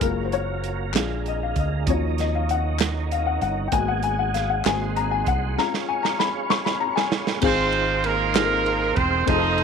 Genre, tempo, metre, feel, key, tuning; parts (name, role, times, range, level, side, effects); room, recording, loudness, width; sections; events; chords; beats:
slow gospel; 65 BPM (dotted quarters); 6/8; straight; A4 = 438 Hz
warm upright piano; accompaniment; 0.0-9.6 s; Ab2 to C#6; -25 LUFS; left 11 dB
tonewheel organ; sustained chords; 0.0-9.6 s; D3 to C#5; -31 LUFS; right 14 dB; slow rotary speaker, chorus vibrato
fingered electric bass; bass; 0.0-9.6 s; Fb1 to D#2; -26 LUFS; right 1 dB
modern studio drum kit; drums; 0.0-9.6 s; crash cymbal, hi-hat, kick drum, ride cymbal, snare drum; -26 LUFS; right 6 dB
group handclap; percussion; 0.9-4.9, 8.4-8.6 s; -32 LUFS; left 14 dB
clear horn section; melody; 7.4-9.6 s; Bb3 to Eb5; -21 LUFS; right 4 dB
light reverb, studio reverb; 1960s-style stereo with parts hard left and right; -20 LUFS; side -6 dB against mid
0.0-7.4 A section; 7.4-9.6 B section
upright piano solo 0.0-7.4; drum fill 5.6-7.4
0.0 F#maj7; 0.9 A#7; 1.9 D#m7; 3.7 G#m7; 4.7 G#7; 5.6 C#; 7.4 Ab6
| 0.01 0.94 | 1.87 2.80 | 3.73 4.65 | 5.58 6.50 | 7.43 8.36 | 9.28